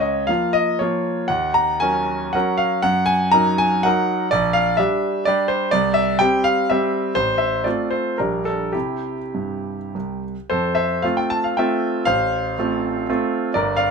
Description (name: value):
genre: classical, romantic triple-time dance for piano with dotted rhythms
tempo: 95-136 BPM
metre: 3/4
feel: rubato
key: F major from 4.3 s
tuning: A4 = 440 Hz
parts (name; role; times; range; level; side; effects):
- clear concert grand piano; solo; 0.0-13.9 s; G1 to Bb5; -18 LUFS; equal; none
room: little or no reverb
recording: close, detailed microphones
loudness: -18 LUFS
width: side -5 dB against mid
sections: 0.0-10.5 A section; 10.5-13.9 B section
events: none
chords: 0.0 Bbm/Db; 1.3 Ebm7; 2.8 Ebm/Gb; 4.3 Gm/Bb; 5.7 C; 7.2 F/A; 8.2 Gm/Bb; 8.7 C; 10.5 F; 12.1 F/A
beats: 0.29 0.81 | 1.31 1.82 2.35 | 2.84 3.34 3.85 | 4.32 4.78 5.26 | 5.71 6.19 6.69 | 7.15 7.65 8.19 | 8.74 9.34 9.95 | 10.50 11.04 11.57 | 12.07 12.57 13.09 | 13.55